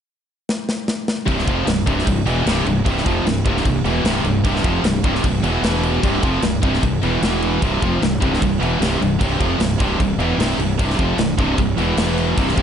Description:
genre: heavy metal.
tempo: 151 BPM.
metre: 4/4.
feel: straight.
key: C major.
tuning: A4 = 440 Hz.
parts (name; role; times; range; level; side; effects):
tight metal drum kit; drums; 0.5-12.6 s; crash cymbal, kick drum, snare drum; -22 LUFS; left 1 dB; none.
heavy high-gain guitar; riff; 1.3-12.6 s; C2 to F3; -22 LUFS; right 10 dB; distortion.
high-gain distorted guitar; riff; 1.3-12.6 s; C2 to F3; -23 LUFS; left 1 dB; distortion.
scooped high-gain guitar; riff; 1.3-12.6 s; C2 to F3; -24 LUFS; left 9 dB; distortion.
fuzz fingered electric bass; bass; 1.3-12.6 s; C1 to F1; -22 LUFS; equal; overdrive.
room: little or no reverb.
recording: nothing above 10.8 kHz.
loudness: -16 LUFS.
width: side -8 dB against mid.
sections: 0.0-1.3 A section; 1.3-12.6 B section.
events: drum fill 0.5-1.3.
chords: 0.0 N.C.; 1.3 C; 5.6 E5; 6.0 C; 7.2 E5; 7.6 C; 12.0 E5.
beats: 0.08 0.48 0.87 | 1.27 1.67 2.06 2.46 | 2.86 3.26 3.65 4.05 | 4.45 4.84 5.24 5.64 | 6.03 6.43 6.83 7.22 | 7.62 8.02 8.41 8.81 | 9.21 9.60 10.00 10.39 | 10.79 11.19 11.58 11.98 | 12.38.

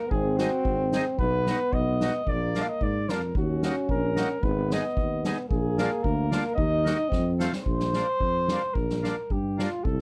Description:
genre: alpine folk, alpine dance band.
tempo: 111 BPM.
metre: 2/4.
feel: straight.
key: Eb minor.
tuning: A4 = 440 Hz.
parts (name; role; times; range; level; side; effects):
mellow flugelhorn; melody; 0.0-10.0 s; F4 to F5; -32 LUFS; equal; none.
clear euphonium; second line; 0.0-7.7 s; Bb3 to Eb4; -33 LUFS; equal; none.
mellow tuba; bass; 0.1-10.0 s; Ab1 to Ab2; -31 LUFS; equal; none.
soft-mallet drum kit; drums; 0.1-10.0 s; hi-hat, kick drum, snare drum; -33 LUFS; equal; none.
accordion; accompaniment; 0.4-9.7 s; A3 to Ab4; -35 LUFS; equal; none.
room: little or no reverb.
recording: none.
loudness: -26 LUFS.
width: mono.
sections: 0.0-7.7 A section; 7.7-10.0 B section.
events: drum fill 7.1-7.7.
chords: 0.1 Ab; 1.2 B; 2.3 Bb; 3.4 Ebm; 4.4 Abm; 5.5 Bb7; 6.6 Ebm; 7.1 F7; 7.7 Bb.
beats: | 0.12 0.66 | 1.20 1.73 | 2.27 2.81 | 3.36 3.90 | 4.44 4.98 | 5.52 6.05 | 6.59 7.13 | 7.68 8.22 | 8.76 9.31 | 9.85.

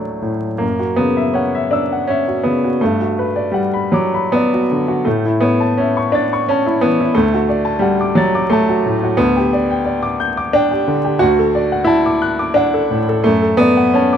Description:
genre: classical, romantic character piece for solo piano.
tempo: 70-92 BPM.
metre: 3/4.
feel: rubato.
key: D major.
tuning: A4 = 440 Hz.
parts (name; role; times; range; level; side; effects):
clear upright piano; solo; 0.0-14.2 s; D2 to A6; -13 LUFS; equal; none.
room: moderate recital hall reverb, RT60 1.6 s.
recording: close, detailed microphones, vinyl crackle.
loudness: -13 LUFS.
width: side -8 dB against mid.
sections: 0.6-14.2 A section.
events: none.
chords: 0.0 D; 0.6 F#5; 2.8 Gmaj7; 5.0 A; 7.1 D; 9.2 G/D; 11.2 D; 13.2 D/F#.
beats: | 0.62 1.36 2.09 | 2.81 3.51 4.31 | 5.05 5.77 6.47 | 7.14 7.82 8.50 | 9.17 9.85 10.53 | 11.20 11.86 12.56 | 13.25 13.95.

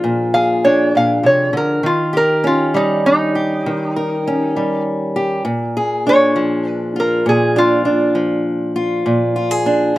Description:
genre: acoustic country blues, solo or duo.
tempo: 67 BPM (dotted quarters).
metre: 12/8.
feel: straight.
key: Bb mixolydian.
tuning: A4 = 440 Hz.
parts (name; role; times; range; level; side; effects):
fingerpicked old ladder-braced acoustic guitar; accompaniment; 0.0-10.0 s; Bb2 to Bb4; -16 LUFS; equal; slapback echo.
lap resonator guitar; melody; 0.3-8.2 s; Eb4 to F5; -16 LUFS; equal; none.
room: little or no reverb.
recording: recorded outdoors, with no room sound.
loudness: -14 LUFS.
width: side -16 dB against mid.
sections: 0.0-10.0 A section.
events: none.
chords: 0.0 Bb7; 1.8 Eb7; 5.5 Bb7.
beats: 0.04 0.94 | 1.85 2.75 3.65 4.56 | 5.46 6.36 7.26 8.16 | 9.06 9.96.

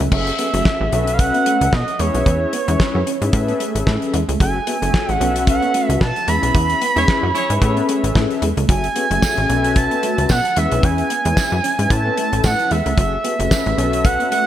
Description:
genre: early-eighties boogie funk.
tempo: 112 BPM.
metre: 4/4.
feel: swing 56% on 16ths.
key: F# minor.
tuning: A4 = 436 Hz.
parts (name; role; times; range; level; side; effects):
mellow synth brass; accompaniment; 0.0-14.5 s; C#4 to E5; -22 LUFS; left 4 dB; chorus.
electric guitar at the edge of break-up; riff; 0.0-14.4 s; G#3 to C#4; -28 LUFS; right 4 dB; wide subtle chorus.
plucky analog bass; bass; 0.0-14.2 s; F#1 to B2; -20 LUFS; equal; none.
damped 70s drum kit; drums; 0.0-14.5 s; crash cymbal, hi-hat, kick drum, snare drum; -20 LUFS; equal; none.
expressive portamento lead; melody; 0.1-14.5 s; C#5 to B5; -20 LUFS; right 2 dB; chorus, diffuse ambient delay.
warm horn section; second line; 7.0-7.5 s; E4 to C#5; -26 LUFS; equal; diffuse ambient delay.
tambourine; percussion; 9.2-13.7 s; none; -31 LUFS; right 7 dB; none.
room: moderate lush hall reverb, RT60 1.7 s, small room ambience.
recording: dreamy mix soaked in reverb.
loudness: -15 LUFS.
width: side -11 dB against mid.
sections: 0.1-14.5 A section.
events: band accent 6.5-8.7.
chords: 0.1 F#m9; 0.9 B9sus4; 2.0 E6; 3.3 Amaj9; 4.4 F#m9; 5.2 B9sus4; 6.3 E6; 7.6 Amaj9; 8.7 F#m9; 9.5 B9sus4; 10.6 E6; 11.9 Aadd9; 13.0 F#m9; 13.8 B9sus4.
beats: | 0.12 0.65 1.19 1.73 | 2.26 2.80 3.33 3.87 | 4.40 4.94 5.48 6.01 | 6.55 7.08 7.62 8.15 | 8.69 9.23 9.76 10.30 | 10.83 11.37 11.90 12.44 | 12.98 13.51 14.05.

